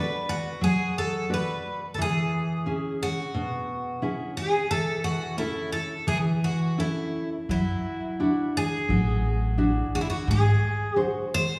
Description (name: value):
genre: fado-style ballad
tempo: 88 BPM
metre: 4/4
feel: rubato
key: unclear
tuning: A4 = 440 Hz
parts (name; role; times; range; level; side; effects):
- picked twelve-string acoustic guitar; melody; 0.0-11.6 s; E4 to B#4; -31 LUFS; equal; none
- nylon-string guitar; accompaniment; 0.0-11.5 s; B2 to D5; -31 LUFS; equal; none
- upright bass; bass; 7.5-10.5 s; A1 to G#2; -27 LUFS; equal; none
room: wet recital hall reverb, RT60 1.8 s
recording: heard from further back in the room, small room ambience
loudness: -27 LUFS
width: mono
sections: 0.0-11.6 A section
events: none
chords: 0.0 Bm; 2.0 E6; 4.7 A/E; 7.5 Dadd9/F#; 10.3 G#7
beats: 0.62 1.30 | 1.98 2.66 3.34 4.02 | 4.70 5.38 6.07 6.78 | 7.49 8.20 8.89 9.58 | 10.27 10.96